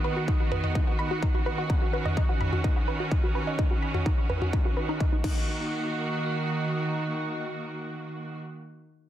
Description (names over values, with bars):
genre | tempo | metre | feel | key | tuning
melodic techno | 127 BPM | 4/4 | straight | Eb minor | A4 = 440 Hz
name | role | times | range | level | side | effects
rich studio string section | sustained chords | 0.0-8.4 s | Eb3 to F#4 | -32 LUFS | right 2 dB | sidechain pumping
wide unison pluck | arpeggios | 0.0-5.7 s | D#4 to B5 | -33 LUFS | equal | sidechain pumping, dub echo
analog drone | drone | 0.0-8.4 s | Eb3 to Eb4 | -36 LUFS | equal | chorus, sidechain pumping
electronic kick drum | drums | 0.3-5.3 s | none | -26 LUFS | equal | distortion, overdrive, studio reverb
techno drum kit | drums | 0.5-5.3 s | crash cymbal, toms | -32 LUFS | equal | overdrive, studio reverb
room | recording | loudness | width
light reverb | dense, heavily limited modern master | -25 LUFS | side -12 dB against mid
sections
0.0-5.5 A section; 5.5-9.1 B section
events
filter sweep on synth arpeggio sound 0.0-5.5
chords
0.0 B/D#; 5.2 Ebm